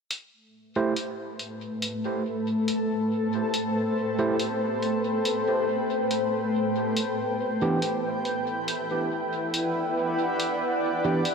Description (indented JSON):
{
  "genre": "ambient dub",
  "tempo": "70 BPM",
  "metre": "4/4",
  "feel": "straight",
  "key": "A dorian",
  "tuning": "A4 = 440 Hz",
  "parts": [
    { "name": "granular cloud pad", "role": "sustained chords", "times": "1.1-11.3 s", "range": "A3 to G5", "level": "-25 LUFS", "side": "equal", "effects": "built-in reverb, vintage 12-bit sampler grit" },
    { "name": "electronic hi-hat", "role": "drums", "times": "0.1-11.3 s", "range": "none", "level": "-32 LUFS", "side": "left 1 dB", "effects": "dub echo" },
    { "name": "overdriven tine electric piano", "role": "stabs", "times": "0.8-11.2 s", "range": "E3 to C5", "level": "-30 LUFS", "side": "right 2 dB", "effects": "low-pass filter, dub echo" }
  ],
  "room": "wet lush hall reverb, RT60 2.7 s",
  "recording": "dreamy mix soaked in reverb",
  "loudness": "-24 LUFS",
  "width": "side -5 dB against mid",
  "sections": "0.1-11.3 A section",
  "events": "filter sweep on ambient pad 0.1-11.3",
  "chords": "0.1 Am7; 7.0 Em7"
}